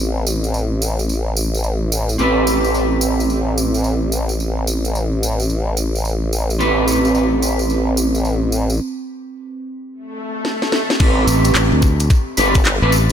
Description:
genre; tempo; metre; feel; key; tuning
glitch hop; 109 BPM; 4/4; swing 64% on 16ths; A minor; A4 = 440 Hz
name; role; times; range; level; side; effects
electric guitar at the edge of break-up; stabs; 0.0-12.9 s; C4 to B4; -20 LUFS; right 2 dB; analog chorus, sidechain pumping, ping-pong delay
formant-sweep wobble bass; bass; 0.0-12.8 s; G1 to A1; -19 LUFS; left 1 dB; chorus
tambourine; percussion; 0.3-13.1 s; none; -26 LUFS; right 2 dB; none
swell; sound effects; 10.1-11.0 s; none; -25 LUFS; left 2 dB; none
drum and bass drum kit; drums; 10.4-12.9 s; crash cymbal, handclaps, hi-hat, rim click, snare drum; -20 LUFS; left 1 dB; small room ambience
electronic kick drum; drums; 11.0-12.6 s; none; -14 LUFS; equal; small room ambience
modern bright fingered electric bass; bass; 11.3-13.1 s; A1 to D2; -15 LUFS; left 1 dB; none
room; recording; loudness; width
moderate lush hall reverb, RT60 2.5 s; dreamy mix soaked in reverb; -15 LUFS; side -9 dB against mid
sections
0.0-11.0 A section; 11.0-13.1 B section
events
break 8.8-11.0; swell 10.1-11.0; drum fill 10.4-11.0; drop 11.0-13.1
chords
0.0 Am9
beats
0.54 1.09 1.64 | 2.19 2.74 3.29 3.84 | 4.39 4.95 5.50 6.05 | 6.60 7.15 7.70 8.25 | 8.80 9.35 9.90 10.45 | 11.00 11.55 12.10 12.65

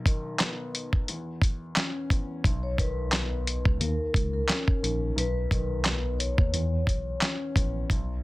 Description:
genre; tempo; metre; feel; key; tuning
hip hop, boom-bap hip-hop; 88 BPM; 4/4; swing 56% on 16ths; B major; A4 = 438 Hz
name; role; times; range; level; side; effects
dark concert grand piano; accompaniment; 0.0-8.2 s; B1 to C#4; -36 LUFS; left 2 dB; high-pass filter, low-pass filter
dusty soul sampler-style drum kit; drums; 0.1-8.1 s; handclaps, hi-hat, kick drum, snare drum; -25 LUFS; equal; vintage 12-bit sampler grit
mellow tine electric piano; bass; 2.4-8.2 s; A#1 to E2; -29 LUFS; equal; medium stereo tremolo
vibraphone with soft mallets; melody; 2.6-7.9 s; A#4 to C#5; -34 LUFS; left 2 dB; high-pass filter, low-pass filter, tape echo
room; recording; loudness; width
little or no reverb; dense, heavily limited modern master; -25 LUFS; side -20 dB against mid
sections
0.0-8.2 A section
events
break 0.0-2.4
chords
0.0 B; 1.1 C#m/E; 2.4 B; 3.8 D#5; 5.2 B; 6.5 E5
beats
0.40 1.08 1.76 | 2.44 3.12 3.81 4.49 | 5.17 5.85 6.53 7.21 | 7.90

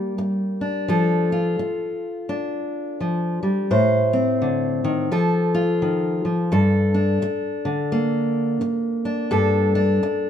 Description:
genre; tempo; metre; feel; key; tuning
folk; 85 BPM; 4/4; swing 61% on 8ths; G minor; A4 = 437 Hz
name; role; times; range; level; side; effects
fingerpicked steel-string acoustic guitar; solo; 0.0-10.3 s; G2 to C5; -19 LUFS; left 1 dB; none
room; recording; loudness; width
wet large studio reverb, RT60 1.3 s; minimal, uncompressed stereo recording; -19 LUFS; side -9 dB against mid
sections
0.0-6.5 A section; 6.5-10.3 B section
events
none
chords
0.0 Gm; 0.9 Dm/F; 3.7 Adim; 5.1 F; 6.5 Gmadd9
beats
0.19 | 0.89 1.59 2.29 3.00 | 3.70 4.40 5.10 5.81 | 6.51 7.21 7.92 8.62 | 9.32 10.03

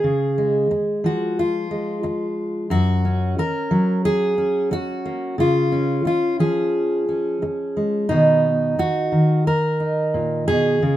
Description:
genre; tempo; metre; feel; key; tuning
folk, solo fingerstyle acoustic guitar; 89 BPM; 4/4; rubato; Db mixolydian; A4 = 439 Hz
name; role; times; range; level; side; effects
fingerpicked steel-string acoustic guitar; solo; 0.0-11.0 s; Gb2 to Bb4; -18 LUFS; equal; none
room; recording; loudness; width
moderate studio reverb, RT60 0.6 s; minimal, uncompressed stereo recording; -18 LUFS; side -13 dB against mid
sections
0.0-11.0 A section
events
none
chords
0.0 Db; 2.7 Gb; 5.4 Db; 8.1 Cb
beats
| 0.04 0.71 1.38 2.04 | 2.71 3.38 4.05 4.71 | 5.38 6.06 6.74 7.42 | 8.11 8.79 9.47 10.15 | 10.83

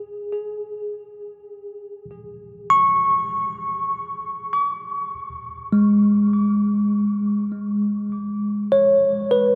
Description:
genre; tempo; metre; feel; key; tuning
ambient; 50 BPM; 4/4; straight; unclear; A4 = 437 Hz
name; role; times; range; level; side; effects
bell-like tine electric piano; solo; 0.0-9.6 s; G#3 to C#6; -21 LUFS; equal; tape echo
room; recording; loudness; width
wet huge ambient reverb, RT60 8.6 s; none; -21 LUFS; mono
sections
0.0-5.1 A section; 5.1-9.6 B section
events
none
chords
0.0 G#sus4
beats
| 0.32 1.51 2.70 3.91 | 5.13 6.33 7.53 8.72

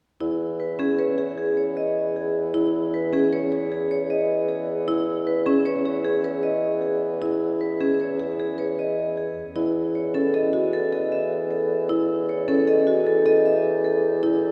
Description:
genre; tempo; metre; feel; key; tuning
classical, minimalist pattern music; 154 BPM; 6/4; straight; E major; A4 = 440 Hz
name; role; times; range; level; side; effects
marimba with soft mallets; arpeggios; 0.2-14.5 s; C#4 to B4; -28 LUFS; equal; none
mellow bassoon; bass; 0.2-14.5 s; E2; -28 LUFS; equal; none
vibraphone with medium hard mallets; melody; 0.6-14.1 s; G#4 to E5; -28 LUFS; equal; none
room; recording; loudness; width
wet cathedral reverb, RT60 5.0 s; heard from further back in the room; -23 LUFS; mono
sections
0.2-14.5 A section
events
none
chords
0.2 E6; 9.6 A5/E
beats
| 0.21 0.60 0.98 1.38 1.76 2.15 | 2.54 2.93 3.32 3.71 4.10 4.49 | 4.88 5.27 5.66 6.05 6.44 6.83 | 7.22 7.61 8.00 8.39 8.78 9.17 | 9.56 9.95 10.34 10.72 11.12 11.51 | 11.89 12.28 12.67 13.06 13.45 13.84 | 14.23

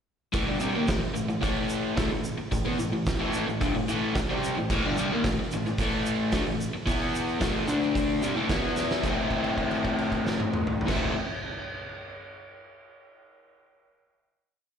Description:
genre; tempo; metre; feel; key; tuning
garage rock duo or trio; 111 BPM; 4/4; straight; A minor; A4 = 439 Hz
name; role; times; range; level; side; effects
crunchy overdriven guitar; riff; 0.3-11.1 s; G2 to E4; -26 LUFS; left 1 dB; slapback echo
oversized low-tuned drum kit; drums; 0.3-11.0 s; crash cymbal, hi-hat, kick drum, snare drum, toms; -30 LUFS; right 1 dB; none
tube shaker; percussion; 0.3-9.3 s; none; -44 LUFS; right 4 dB; none
room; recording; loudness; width
light reverb; live gig heard through the venue's PA, recital hall reverb; -25 LUFS; side -7 dB against mid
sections
0.3-9.0 riff; 9.0-11.2 final chord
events
drum fill 8.8; held note 9.0-10.9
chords
0.3 Am; 6.9 E5; 7.4 A5; 7.7 D5; 8.2 Am; 8.5 E5; 9.0 Am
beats
| 0.34 0.89 1.44 1.99 | 2.53 3.08 3.62 4.17 | 4.71 5.25 5.79 6.33 | 6.87 7.41 7.95 8.49 | 9.04 9.58 10.12 10.66

